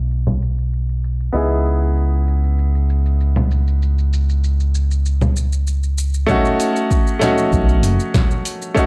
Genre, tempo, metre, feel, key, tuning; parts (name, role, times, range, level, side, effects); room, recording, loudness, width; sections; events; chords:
sunset chillout; 97 BPM; 4/4; straight; A4 = 440 Hz
bright grand piano; accompaniment; 0.0-8.9 s; A3 to G#4; -22 LUFS; equal; low-pass filter, digital delay
overdriven fingered electric bass; bass; 0.0-7.9 s; F#1 to C#2; -19 LUFS; equal; tube saturation
deep house drum kit; drums; 0.1-8.9 s; congas, hi-hat, shaker, snare drum; -25 LUFS; equal; overdrive
electronic kick drum; drums; 6.3-8.9 s; -20 LUFS; equal; overdrive
light reverb, digital ambience; dark, warm production, low-pass filter; -18 LUFS; mono
0.0-6.3 A section; 6.3-8.9 B section
filter sweep on grand piano 0.0-6.3; filter sweep 0.0-6.3
0.0 B9; 1.3 C#m7; 6.3 B9